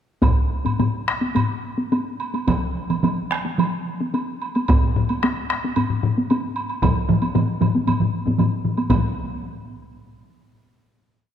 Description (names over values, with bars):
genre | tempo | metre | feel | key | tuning
japanese traditional, taiko drum ensemble | 106-124 BPM | 4/4 | straight | none | none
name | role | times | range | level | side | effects
solo taiko drums | percussion | 0.2-9.4 s | none | -23 LUFS | left 5 dB | none
taiko ensemble | percussion | 0.2-9.1 s | none | -24 LUFS | equal | none
taiko ensemble | percussion | 0.2-9.1 s | none | -22 LUFS | right 1 dB | none
woodblock | percussion | 0.2-9.1 s | none | -30 LUFS | right 3 dB | none
taiko ensemble | percussion | 2.5-9.4 s | none | -23 LUFS | right 4 dB | none
room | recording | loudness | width
wet scoring stage reverb, RT60 2.2 s | dark, warm production | -19 LUFS | side -9 dB against mid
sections
0.2-8.9 A section; 8.9-10.9 final hit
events
speeding up 0.2-10.9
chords
none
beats
| 0.23 0.79 1.36 1.92 | 2.48 3.04 3.59 4.14 | 4.69 5.23 5.77 6.30 | 6.83 7.36 7.88 8.39 | 8.90